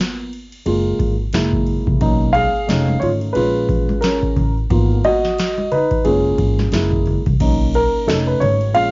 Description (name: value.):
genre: hip hop, jazz-hop.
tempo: 89 BPM.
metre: 4/4.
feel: swing 58% on 16ths.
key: unclear.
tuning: A4 = 440 Hz.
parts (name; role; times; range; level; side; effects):
dark concert grand piano; accompaniment; 0.0-8.9 s; G#3 to E#5; -17 LUFS; equal; cassette tape, plate reverb.
booming analog drum machine; drums; 0.0-8.9 s; crash cymbal, hi-hat, kick drum, ride cymbal, snare drum; -20 LUFS; equal; cassette tape.
upright bass; bass; 0.7-8.9 s; F1 to B#1; -20 LUFS; equal; none.
egg shaker and congas; percussion; 2.0-8.9 s; none; -27 LUFS; left 1 dB; none.
room: light reverb.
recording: home recording on cassette, vinyl crackle, nothing above 7.5 kHz.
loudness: -14 LUFS.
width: side -28 dB against mid.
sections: 0.0-7.4 A section; 7.4-8.9 B section.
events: grand piano solo 0.0-7.4, 7.4-8.9.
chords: 0.0 G#m69 (rootless); 0.7 F#maj9; 1.3 F#9; 2.0 Bmaj9; 2.7 F7alt; 3.4 A#m7; 4.7 G#m69; 6.1 F#maj9; 6.7 F#9; 7.4 Bmaj9; 8.1 F7alt.